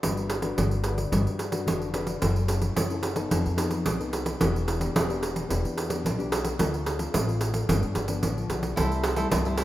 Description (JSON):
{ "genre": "samba and choro", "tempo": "110 BPM", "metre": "4/4", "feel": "straight", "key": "G major", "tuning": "A4 = 439 Hz", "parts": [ { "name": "nylon-string guitar", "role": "accompaniment", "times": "0.0-9.6 s", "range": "G2 to B4", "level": "-32 LUFS", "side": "left 3 dB", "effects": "none" }, { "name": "upright bass", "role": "bass", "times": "0.0-9.6 s", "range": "E1 to G2", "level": "-29 LUFS", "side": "equal", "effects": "none" }, { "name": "pandeiro", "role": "percussion", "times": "0.0-9.6 s", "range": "none", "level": "-27 LUFS", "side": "right 2 dB", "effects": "none" }, { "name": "cavaquinho", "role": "accompaniment", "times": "8.8-9.6 s", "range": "E4 to E5", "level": "-32 LUFS", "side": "right 3 dB", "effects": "none" } ], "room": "moderate plate reverb, RT60 2.3 s", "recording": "rough home demo mix", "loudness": "-24 LUFS", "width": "side -14 dB against mid", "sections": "0.0-9.6 A section", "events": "none", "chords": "0.0 Gmaj7; 2.2 F#m7; 3.3 F7#11; 4.4 Em7; 6.6 Dm7; 7.7 G7; 8.8 C6" }